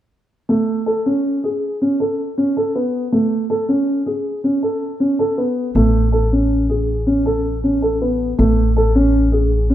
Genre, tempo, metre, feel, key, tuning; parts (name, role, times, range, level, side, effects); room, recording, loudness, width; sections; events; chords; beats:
contemporary instrumental, chamber music in an uneven meter; 160 BPM; 7/4; straight; A major; A4 = 442 Hz
dark baby grand piano; arpeggios; 0.5-9.7 s; A3 to A4; -16 LUFS; equal
upright bass; bass; 5.7-9.7 s; A1; -18 LUFS; equal
moderate recital hall reverb, RT60 1.6 s; dark, warm production; -15 LUFS; side -12 dB against mid
0.5-9.7 A section
0.5 Amaj7
| 0.49 0.87 1.25 1.62 2.00 2.38 2.75 | 3.13 3.50 3.88 4.25 4.63 5.01 5.38 | 5.76 6.13 6.51 6.89 7.26 7.64 8.01 | 8.39 8.76 9.14 9.51